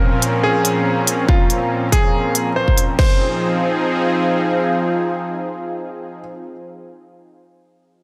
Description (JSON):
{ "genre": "heavy wobble dubstep", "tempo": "141 BPM", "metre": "4/4", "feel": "swing 55% on 16ths, half-time", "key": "F minor", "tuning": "A4 = 440 Hz", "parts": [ { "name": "bright grand piano", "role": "melody", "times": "0.0-6.2 s", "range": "F4 to C5", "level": "-25 LUFS", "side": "equal", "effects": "digital delay" }, { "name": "supersaw pad", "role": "sustained chords", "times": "0.0-6.2 s", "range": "Bb2 to Ab4", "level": "-23 LUFS", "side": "equal", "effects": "sidechain pumping" }, { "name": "warbly tape-like pad", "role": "texture", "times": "0.0-6.3 s", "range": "F4 to C6", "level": "-26 LUFS", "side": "equal", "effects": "chorus, built-in reverb, phaser, sidechain pumping" }, { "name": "electronic hi-hat", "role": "drums", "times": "0.2-2.9 s", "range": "none", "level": "-22 LUFS", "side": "equal", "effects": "none" }, { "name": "dubstep drum kit", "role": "drums", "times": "1.3-3.1 s", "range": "crash cymbal, kick drum", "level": "-18 LUFS", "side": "equal", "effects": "none" } ], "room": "moderate lush hall reverb, RT60 2.0 s", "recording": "none", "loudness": "-18 LUFS", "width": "mono", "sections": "0.0-3.0 A section; 3.0-6.4 B section", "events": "none", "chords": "0.0 Bbmadd9; 3.0 Fm7" }